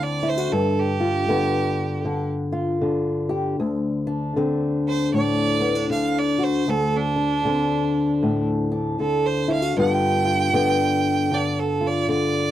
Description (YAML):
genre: acoustic country blues, solo or duo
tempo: 78 BPM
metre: 4/4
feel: swing 62% on 8ths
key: unclear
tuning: A4 = 436 Hz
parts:
  - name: clear fiddle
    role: melody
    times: 0.0-12.5 s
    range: D4 to G5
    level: -24 LUFS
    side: right 6 dB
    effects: none
  - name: fingerpicked old ladder-braced acoustic guitar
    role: accompaniment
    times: 0.0-12.5 s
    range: D2 to G4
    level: -21 LUFS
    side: left 2 dB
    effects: none
room: moderate booth ambience, RT60 0.3 s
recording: dry, close 1970s-style studio recording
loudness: -20 LUFS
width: side -12 dB against mid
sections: 0.0-12.5 A section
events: none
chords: 0.0 D7; 0.5 G7; 3.6 D7(no3); 9.8 G7